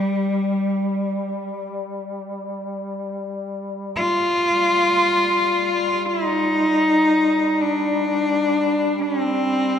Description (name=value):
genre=caucasian folk, Caucasian lament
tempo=free time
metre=none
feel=none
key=unclear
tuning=A4 = 442 Hz
part: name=warm cello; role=melody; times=0.0-9.8 s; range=G3 to F4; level=-18 LUFS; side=left 1 dB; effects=none
part: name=mellow duduk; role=drone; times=0.0-9.8 s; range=G3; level=-28 LUFS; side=left 2 dB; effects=none
room=wet cathedral reverb, RT60 5.4 s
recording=in a vast, echoing space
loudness=-18 LUFS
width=side -8 dB against mid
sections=0.0-9.8 A section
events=none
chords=none